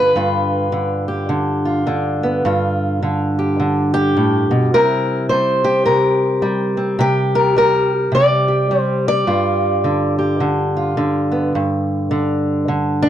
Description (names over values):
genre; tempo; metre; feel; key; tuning
acoustic country blues, solo or duo; 106 BPM; 4/4; swing 61% on 8ths; unclear; A4 = 440 Hz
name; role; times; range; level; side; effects
fingerpicked old ladder-braced acoustic guitar; solo; 0.0-13.1 s; G2 to D5; -15 LUFS; equal; none
room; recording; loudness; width
studio reverb; dry, close 1970s-style studio recording; -15 LUFS; side -10 dB against mid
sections
0.0-13.1 A section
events
none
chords
0.0 G7; 4.7 C7; 9.3 G7(no3)